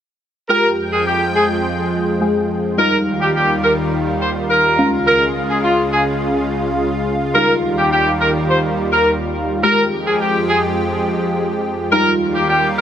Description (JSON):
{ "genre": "pop", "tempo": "105 BPM", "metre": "4/4", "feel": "straight", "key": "F minor", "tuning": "A4 = 441 Hz", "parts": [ { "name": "warm horn section", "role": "melody", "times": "0.5-12.8 s", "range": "F4 to C5", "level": "-16 LUFS", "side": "equal", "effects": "tape echo" }, { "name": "deep mellow chord stab", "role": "accompaniment", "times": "0.5-12.8 s", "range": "G3 to Ab4", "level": "-21 LUFS", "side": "left 1 dB", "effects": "chorus" }, { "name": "lush unison pad", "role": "sustained chords", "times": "0.5-12.8 s", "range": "Db2 to G5", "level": "-18 LUFS", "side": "equal", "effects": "chorus" } ], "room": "moderate lush hall reverb, RT60 2.6 s", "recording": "none", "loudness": "-14 LUFS", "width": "side -9 dB against mid", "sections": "0.5-12.8 A section", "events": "none", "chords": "0.5 Fmadd9; 2.8 Ebadd9; 4.8 Db; 7.4 Ebadd9; 9.6 Fmadd9; 11.9 Ebadd9", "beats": "| 0.49 1.07 1.64 2.21 | 2.78 3.35 3.92 4.49 | 5.07 5.64 6.21 6.78 | 7.35 7.92 8.49 9.07 | 9.64 10.21 10.78 11.35 | 11.92 12.49" }